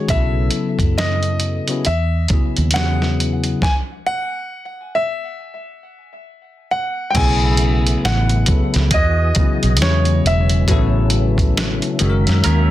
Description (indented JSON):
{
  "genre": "R&B, neo-soul",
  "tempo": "68 BPM",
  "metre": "4/4",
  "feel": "swing 61% on 16ths",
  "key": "E major",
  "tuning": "A4 = 440 Hz",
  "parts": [
    { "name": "clear grand piano", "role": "melody", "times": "0.0-12.0 s", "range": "C#5 to G#5", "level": "-23 LUFS", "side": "equal", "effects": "tape echo" },
    { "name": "bell-like tine electric piano", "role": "accompaniment", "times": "0.0-12.7 s", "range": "B2 to C#5", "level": "-21 LUFS", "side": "left 4 dB", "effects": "lush chorus" },
    { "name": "vintage muted fingered electric bass", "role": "bass", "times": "0.1-12.7 s", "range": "E1 to F#2", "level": "-17 LUFS", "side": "equal", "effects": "none" },
    { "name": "dusty soul sampler-style drum kit", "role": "drums", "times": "0.1-12.7 s", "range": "crash cymbal, hi-hat, kick drum, snare drum", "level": "-19 LUFS", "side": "equal", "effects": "none" },
    { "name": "percussive tonewheel organ", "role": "sustained chords", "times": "7.1-12.7 s", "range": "E3 to E5", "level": "-26 LUFS", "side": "right 1 dB", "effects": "slow rotary speaker, overdrive, chorus vibrato" },
    { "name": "electric guitar through a small old amp", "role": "second line", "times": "12.4-12.7 s", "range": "C#4 to A#4", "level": "-21 LUFS", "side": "right 5 dB", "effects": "warbly pitch drift" }
  ],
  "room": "light reverb",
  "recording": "dense, heavily limited modern master",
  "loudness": "-15 LUFS",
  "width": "side -14 dB against mid",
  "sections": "0.0-7.1 A section; 7.1-12.7 B section",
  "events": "stop 3.6-7.1",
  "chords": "0.1 B9sus4; 1.9 Emaj9; 2.7 E69; 3.6 N.C.; 7.1 B9sus4; 8.9 Emaj9; 9.8 E69; 10.7 A69; 12.0 F#13"
}